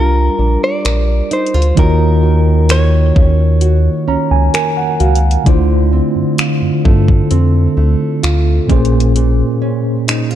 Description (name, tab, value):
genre	contemporary R&B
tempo	65 BPM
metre	4/4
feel	straight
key	unclear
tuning	A4 = 440 Hz
part	direct-recorded clean electric guitar	melody	0.0-5.0 s	Bb4 to D5	-19 LUFS	left 1 dB	spring reverb
part	mellow tine electric piano	accompaniment	0.0-10.4 s	Bb2 to Bb5	-16 LUFS	equal	medium stereo tremolo
part	nylon-string guitar	arpeggios	0.0-10.4 s	Bb2 to Bb4	-19 LUFS	right 4 dB	none
part	rubbery square bass	bass	0.0-9.4 s	Bb1 to G2	-12 LUFS	equal	none
part	trap drum kit	drums	0.8-10.3 s	finger snaps, hi-hat, kick drum	-15 LUFS	equal	none
room	little or no reverb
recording	dark, warm production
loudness	-10 LUFS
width	side -11 dB against mid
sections	0.0-10.4 A section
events	tine electric piano fill 3.6-5.5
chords	0.0 Gm7; 1.8 Ebm7; 5.5 Dm7; 8.7 Bbm7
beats	0.85 | 1.77 2.70 3.62 4.54 | 5.47 6.39 7.31 8.23 | 9.16 10.08